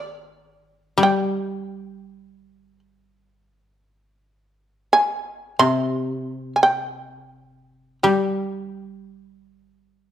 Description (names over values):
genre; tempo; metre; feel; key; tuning
japanese traditional, Japanese chamber music; free time; none; none; G miyako bushi; A4 = 440 Hz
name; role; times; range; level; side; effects
shamisen; melody; 0.0-10.1 s; G4 to C6; -19 LUFS; right 2 dB; none
koto; accompaniment; 0.0-10.1 s; C3 to G3; -22 LUFS; left 3 dB; none
room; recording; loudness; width
moderate recital hall reverb, RT60 1.4 s; faint mains hum; -19 LUFS; side -10 dB against mid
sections
0.0-10.1 A section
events
none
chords
none